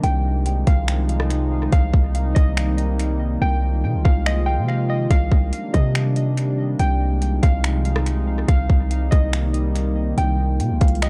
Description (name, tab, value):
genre	hip hop, atmospheric cloud-rap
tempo	142 BPM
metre	4/4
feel	half-time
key	unclear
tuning	A4 = 439 Hz
part	warbly dusty pluck	melody	0.0-11.1 s	Eb5 to G5	-31 LUFS	equal	chorus, low-pass filter, tape echo
part	warbly tape-like pad	sustained chords	0.0-11.1 s	C3 to F4	-28 LUFS	equal	chorus, built-in reverb, sidechain pumping
part	warm 808-style bass	bass	0.0-11.1 s	C2 to C3	-22 LUFS	equal	none
part	trap drum kit	drums	0.0-11.1 s	finger snaps, hi-hat, kick drum, rim click	-22 LUFS	equal	vintage 12-bit sampler grit
room	digital ambience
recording	echo-heavy mix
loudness	-20 LUFS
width	mono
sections	0.0-11.1 A section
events	hi-hats muted 3.4-5.1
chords	0.0 Ab6/C; 1.7 Eb6/C; 3.4 Bb7sus4/C; 5.1 Cm9; 6.8 Ab6/C; 8.5 Eb6/C; 10.2 Bb7sus4/C